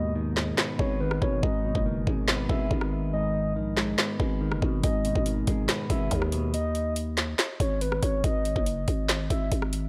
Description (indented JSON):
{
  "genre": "hip hop, trap",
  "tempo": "141 BPM",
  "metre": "4/4",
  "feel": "half-time",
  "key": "G# minor",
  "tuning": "A4 = 441 Hz",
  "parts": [
    { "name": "soft octave-layered synth lead", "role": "second line", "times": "0.0-9.5 s", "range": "B4 to E5", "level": "-35 LUFS", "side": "equal", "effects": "chorus, analog delay" },
    { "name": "semi-hollow electric guitar", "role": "accompaniment", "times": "0.0-6.5 s", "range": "G#2 to B3", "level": "-34 LUFS", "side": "equal", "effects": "spring reverb" },
    { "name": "growling 808-style bass", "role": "bass", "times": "0.0-9.9 s", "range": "F#1 to D#2", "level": "-31 LUFS", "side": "equal", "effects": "none" },
    { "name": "trap drum kit", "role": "drums", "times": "0.4-9.8 s", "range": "handclaps, hi-hat, kick drum, rim click, snare drum", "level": "-30 LUFS", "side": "equal", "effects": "none" }
  ],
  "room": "light reverb",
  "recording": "dry, gritty hardware recording",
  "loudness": "-27 LUFS",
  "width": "mono",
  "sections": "0.0-9.9 A section",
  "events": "break 0.0-4.8",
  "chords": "0.0 G#m"
}